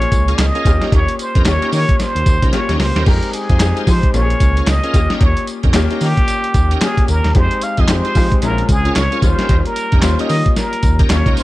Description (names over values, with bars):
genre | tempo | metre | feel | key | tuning
R&B, new jack swing | 112 BPM | 4/4 | swing 61% on 16ths | unclear | A4 = 439 Hz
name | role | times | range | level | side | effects
trumpet with plunger mute | melody | 0.0-11.4 s | G4 to F5 | -21 LUFS | right 1 dB | none
clear baby grand piano | accompaniment | 0.0-11.4 s | G3 to Ab4 | -22 LUFS | left 5 dB | none
smooth synth bass | bass | 0.0-11.3 s | Bb1 to F3 | -17 LUFS | equal | none
boom bap sampler-style drum kit | drums | 0.0-11.4 s | crash cymbal, handclaps, hi-hat, kick drum, snare drum, tambourine | -15 LUFS | equal | vintage 12-bit sampler grit
bright tonewheel organ | stabs | 0.3-11.4 s | Db4 to C5 | -25 LUFS | right 1 dB | overdrive, chorus vibrato, slow rotary speaker
cowbell | percussion | 0.4-11.3 s | none | -35 LUFS | right 1 dB | none
room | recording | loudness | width
digital ambience | none | -12 LUFS | side -17 dB against mid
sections
0.0-11.4 A section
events
drum fill 2.5-3.1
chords
0.0 Bbm7; 0.7 Eb7; 3.1 Fm7; 4.1 Bbm7; 4.9 Eb7; 7.4 Fm7; 8.4 Bbm7; 9.2 Eb7